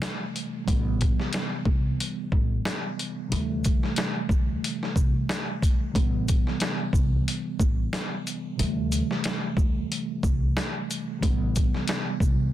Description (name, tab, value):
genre	hip hop, boom-bap hip-hop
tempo	91 BPM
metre	4/4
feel	swing 58% on 16ths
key	A minor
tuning	A4 = 441 Hz
part	mellow tine electric piano	accompaniment	0.0-12.5 s	C3 to B3	-30 LUFS	right 1 dB	medium stereo tremolo, cassette tape, high-pass filter, low-pass filter
part	trip hop sampler-style drum kit	drums	0.0-12.4 s	hi-hat, kick drum, shaker, snare drum	-25 LUFS	equal	none
part	upright bass	bass	0.7-12.5 s	A1 to D2	-28 LUFS	equal	none
room	little or no reverb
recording	dense, heavily limited modern master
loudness	-24 LUFS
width	side -13 dB against mid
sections	0.0-12.5 A section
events	none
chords	0.0 D9sus4 (rootless); 0.7 Am7; 3.3 D9sus4; 6.0 Am7; 8.6 D9sus4; 11.2 Am7